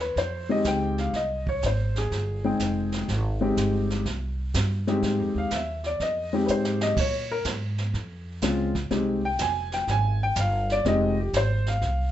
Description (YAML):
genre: jazz piano trio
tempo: 124 BPM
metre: 4/4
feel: swing 68% on 8ths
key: F minor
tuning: A4 = 440 Hz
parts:
  - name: warm upright piano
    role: melody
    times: 0.0-12.1 s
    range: Ab3 to Ab5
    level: -25 LUFS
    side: left 1 dB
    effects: none
  - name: upright bass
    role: bass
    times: 0.0-12.1 s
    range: F1 to Bb2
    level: -28 LUFS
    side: right 1 dB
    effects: none
  - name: jazz brush drum kit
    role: drums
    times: 0.0-12.1 s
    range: brushed snare drum, crash cymbal, hi-hat, kick drum, snare drum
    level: -33 LUFS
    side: right 2 dB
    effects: none
room: moderate studio reverb, RT60 0.6 s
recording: nothing above 8.0 kHz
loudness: -23 LUFS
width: side -12 dB against mid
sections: 0.0-12.1 A section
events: upright piano solo 0.0-12.1; drum fill 6.5-7.0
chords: 0.0 Fm9; 7.0 Bbm7; 8.9 Fm9